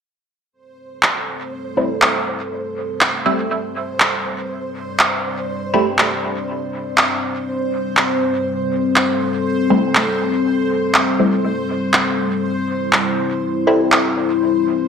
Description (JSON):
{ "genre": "dub techno", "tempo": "121 BPM", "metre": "4/4", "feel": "swing 53% on 16ths", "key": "A minor", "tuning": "A4 = 440 Hz", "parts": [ { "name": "dark analog pad", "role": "sustained chords", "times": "1.1-14.9 s", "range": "G3 to D5", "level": "-21 LUFS", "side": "left 3 dB", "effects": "chorus, phaser" }, { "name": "bubbling stepped-filter texture", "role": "texture", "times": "0.7-14.9 s", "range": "C5", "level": "-27 LUFS", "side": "right 3 dB", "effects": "chorus, built-in reverb" }, { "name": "electronic handclaps", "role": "drums", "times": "1.0-14.0 s", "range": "none", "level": "-16 LUFS", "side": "right 1 dB", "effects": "overdrive, studio reverb, gated reverb, dub echo" }, { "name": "filtered dub chord stab", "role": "stabs", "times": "1.8-5.9, 9.7-13.8 s", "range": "G3 to E4", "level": "-20 LUFS", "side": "equal", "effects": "phaser, dub echo" } ], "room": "moderate plate reverb, RT60 1.3 s", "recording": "bright 1980s-style digital production", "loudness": "-16 LUFS", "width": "side -7 dB against mid", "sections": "0.5-14.9 A section", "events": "filter sweep on analog synth pad 0.5-14.9", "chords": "0.5 Am7" }